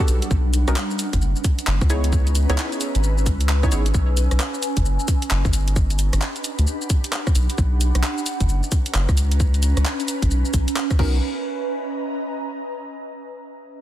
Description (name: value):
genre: UK garage, two-step garage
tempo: 132 BPM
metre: 4/4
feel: swing 63% on 16ths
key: B major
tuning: A4 = 443 Hz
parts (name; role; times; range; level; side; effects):
- punchy chord stab; stabs; 0.0-3.8, 11.0-11.2 s; B3 to C#5; -28 LUFS; right 1 dB; chorus, tape echo
- electronic kick drum; drums; 0.0-11.1 s; none; -20 LUFS; equal; overdrive, small room ambience
- garage drum kit; drums; 0.0-11.1 s; crash cymbal, handclaps, hi-hat, rim click, shaker; -27 LUFS; equal; overdrive, small room ambience
- ethereal airy pad; texture; 0.1-13.0 s; G3 to E6; -28 LUFS; right 1 dB; ensemble chorus, built-in reverb, phaser, sidechain pumping
- soft dub sub bass; bass; 0.1-11.2 s; F#1 to D2; -19 LUFS; equal; sidechain pumping
room: digital ambience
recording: dense, heavily limited modern master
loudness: -18 LUFS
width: side -13 dB against mid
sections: 0.0-11.2 A section; 11.2-13.0 B section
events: none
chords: 0.3 Bmaj9; 1.9 C#m7; 3.9 Bmaj9; 5.5 Gmaj7; 7.6 Bmaj9; 9.2 C#m7; 11.0 Bmaj9